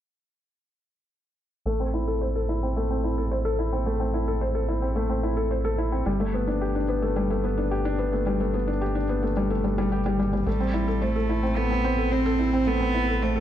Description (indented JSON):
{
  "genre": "piano and strings electronica",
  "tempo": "109 BPM",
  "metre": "4/4",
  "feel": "straight",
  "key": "A minor",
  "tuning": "A4 = 441 Hz",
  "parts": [
    { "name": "felt-muted upright piano", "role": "riff", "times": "1.7-13.4 s", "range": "G3 to C5", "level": "-26 LUFS", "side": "left 1 dB", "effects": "low-pass filter, digital delay" },
    { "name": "round analog bass", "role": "bass", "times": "1.7-13.4 s", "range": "G1 to A1", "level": "-28 LUFS", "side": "equal", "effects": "none" },
    { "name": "rich cello", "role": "melody", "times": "10.5-13.4 s", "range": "G3 to C4", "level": "-25 LUFS", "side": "right 2 dB", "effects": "digital delay" }
  ],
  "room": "moderate recital hall reverb, RT60 1.8 s",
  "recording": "dark, warm production",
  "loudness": "-23 LUFS",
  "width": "side -11 dB against mid",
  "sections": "1.7-13.4 A section",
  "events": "filter sweep on felt piano 1.7-13.4",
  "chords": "1.7 Am; 6.1 Gadd9; 10.5 Am",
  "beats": "| 1.66 2.21 2.76 3.31 | 3.86 4.41 4.96 5.51 | 6.06 6.61 7.16 7.71 | 8.26 8.81 9.36 9.91 | 10.46 11.02 11.57 12.12 | 12.67 13.22"
}